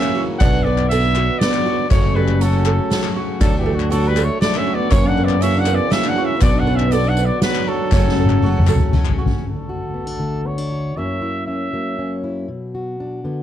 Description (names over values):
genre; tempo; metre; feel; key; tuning
indie folk with a building arrangement; 120 BPM; 3/4; straight; unclear; A4 = 442 Hz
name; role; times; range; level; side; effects
warm trumpet; melody; 0.0-12.2 s; F#4 to F#5; -23 LUFS; equal; none
clear French horn; second line; 0.0-9.2 s; D3 to D4; -24 LUFS; right 9 dB; none
picked twelve-string acoustic guitar; accompaniment; 0.0-9.4 s; F#2 to F#4; -23 LUFS; left 5 dB; none
hand-pumped harmonium; sustained chords; 0.0-9.4 s; C#3 to F#4; -31 LUFS; left 1 dB; none
ukulele; arpeggios; 0.0-9.4 s; F#4 to D5; -27 LUFS; right 7 dB; tape echo
group handclap; percussion; 0.0-9.2 s; none; -31 LUFS; left 15 dB; none
picked electric bass; bass; 0.4-8.8 s; F#1 to F#2; -18 LUFS; equal; none
soft-mallet drum kit; drums; 0.4-9.4 s; hi-hat, kick drum, snare drum, toms; -19 LUFS; equal; none
tambourine; percussion; 3.4-8.8 s; none; -40 LUFS; right 17 dB; none
fingerpicked plugged-in steel-string acoustic guitar; accompaniment; 9.4-13.4 s; D2 to F#4; -24 LUFS; left 1 dB; none
room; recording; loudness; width
light reverb; dark, warm production; -16 LUFS; side -11 dB against mid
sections
0.0-9.4 A section; 9.4-13.4 B section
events
drum fill 7.9-9.4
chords
0.4 Bm; 1.9 F#m; 3.4 D; 4.9 F#7; 6.4 Bm; 7.9 F#m; 9.4 D; 11.0 F#7; 12.5 Bm